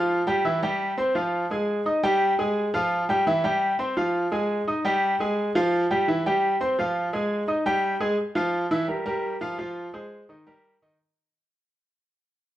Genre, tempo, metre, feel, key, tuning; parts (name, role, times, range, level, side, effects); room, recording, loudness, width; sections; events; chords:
latin; 171 BPM; 4/4; straight; F minor; A4 = 440 Hz
bright grand piano; solo; 0.0-11.0 s; Eb3 to Eb6; -22 LUFS; equal
wet large studio reverb, RT60 0.9 s; band playing live in one room; -22 LUFS; side -13 dB against mid
0.0-8.2 A section; 8.2-11.0 B section
fade-out 8.2-11.0
0.4 C; 1.1 Fm; 1.9 Eb; 2.6 Fm; 3.3 C; 4.0 Fm; 4.7 Eb; 5.4 Fm; 6.1 C; 6.8 Fm; 7.5 Eb; 8.2 N.C.; 8.9 Fsus24; 9.6 Fm; 10.3 Eb